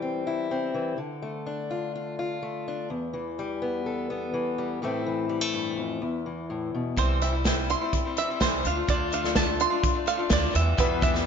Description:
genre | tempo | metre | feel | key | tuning
indie folk with a building arrangement | 125 BPM | 4/4 | straight | unclear | A4 = 439 Hz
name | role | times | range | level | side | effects
fingerpicked acoustic archtop guitar | accompaniment | 0.0-7.9 s | E2 to A4 | -28 LUFS | left 3 dB | slapback echo
picked acoustic archtop guitar | accompaniment | 7.0-11.3 s | E2 to F4 | -29 LUFS | left 5 dB | slapback echo
bluegrass banjo | arpeggios | 7.0-11.3 s | B4 to C6 | -28 LUFS | right 6 dB | slapback echo
upright bass | bass | 7.0-11.3 s | C2 to E2 | -28 LUFS | right 1 dB | none
natural country drum kit | drums | 7.0-11.2 s | hi-hat, kick drum, snare drum | -26 LUFS | right 1 dB | none
clear grand piano | accompaniment | 10.8-11.3 s | E2 to E5 | -29 LUFS | left 8 dB | slapback echo
room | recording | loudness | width
moderate lush hall reverb, RT60 1.8 s | big arena sound, nothing above 7.6 kHz | -25 LUFS | side -7 dB against mid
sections
0.0-7.0 A section; 7.0-11.3 B section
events
build-up 7.0-11.3; drum fill 7.0-11.3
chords
0.0 C; 1.0 Dm; 2.9 Em; 4.8 Am; 6.0 E5; 7.0 C; 8.7 Dm; 10.6 Em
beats
0.27 0.75 | 1.23 1.71 2.19 2.67 | 3.15 3.63 4.11 4.59 | 5.07 5.54 6.02 6.50 | 6.98 7.46 7.93 8.41 | 8.89 9.36 9.84 10.32 | 10.79

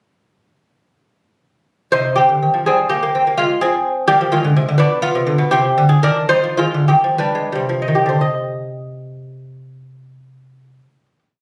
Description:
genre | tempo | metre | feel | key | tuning
classical, baroque-style dance for lute | 56-87 BPM (dotted quarters) | 6/8 | rubato | C minor | A4 = 440 Hz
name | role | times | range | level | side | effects
lute | solo | 1.9-11.4 s | B2 to Eb5 | -16 LUFS | equal | none
room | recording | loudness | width
light reverb | recorded on a phone in the room, studio reverb | -16 LUFS | mono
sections
1.9-8.2 A section; 8.2-11.4 final chord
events
slowing down 4.1-8.2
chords
1.9 Cm; 2.7 Gm; 3.4 Fm/Ab; 4.8 Bdim; 5.5 Cm; 6.3 Abmaj13; 7.2 G7; 8.2 Cm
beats
| 1.94 2.67 | 3.38 4.09 | 4.78 5.50 | 6.29 7.18 | 8.21 9.24 | 10.28 11.32

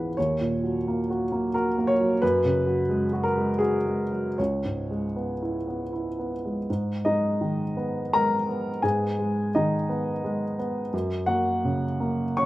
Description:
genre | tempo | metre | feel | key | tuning
neoclassical minimalist piano | 76-90 BPM | 3/4 | rubato | unclear | A4 = 438 Hz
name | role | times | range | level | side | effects
warm upright piano | solo | 0.0-12.5 s | C#2 to C#6 | -23 LUFS | equal | none
room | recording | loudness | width
light reverb, studio reverb | rough home demo mix | -23 LUFS | side -17 dB against mid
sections
0.0-6.7 A section; 6.7-12.5 B section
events
none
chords
0.2 D#m7; 2.2 F#sus2; 4.4 C#m7; 6.7 G#m; 10.9 F#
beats
| 0.17 0.86 1.55 | 2.22 2.90 3.61 | 4.38 5.16 5.92 | 6.68 7.39 8.13 | 8.83 9.54 10.23 | 10.93 11.63 12.37

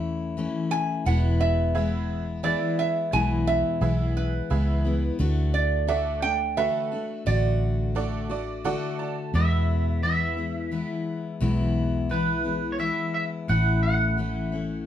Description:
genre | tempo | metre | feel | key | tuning
honky-tonk and classic country | 87 BPM | 3/4 | straight | E mixolydian | A4 = 440 Hz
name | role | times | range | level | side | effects
lap resonator guitar | second line | 0.0-8.3 s | B4 to G#5 | -27 LUFS | right 4 dB | none
picked steel-string acoustic guitar | accompaniment | 0.0-14.9 s | E2 to F#4 | -28 LUFS | left 4 dB | none
vintage muted fingered electric bass | bass | 0.0-14.9 s | E1 to E2 | -26 LUFS | right 1 dB | none
tack piano | accompaniment | 1.7-9.3 s | F#4 to A5 | -33 LUFS | right 7 dB | none
twangy electric guitar | melody | 9.4-14.8 s | B4 to F#5 | -28 LUFS | right 2 dB | analog chorus, analog delay
room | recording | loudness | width
light reverb | none | -23 LUFS | side -10 dB against mid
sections
0.0-9.3 A section; 9.3-14.9 B section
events
resonator guitar played with a steel bar solo 0.0-9.3; honky-tonk piano fill 8.0-9.3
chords
0.0 A; 1.1 E; 5.2 D; 9.3 E; 13.5 A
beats
0.37 | 1.06 1.75 2.44 | 3.13 3.82 4.51 | 5.20 5.89 6.58 | 7.27 7.96 8.65 | 9.34 10.03 10.72 | 11.41 12.11 12.80 | 13.49 14.18

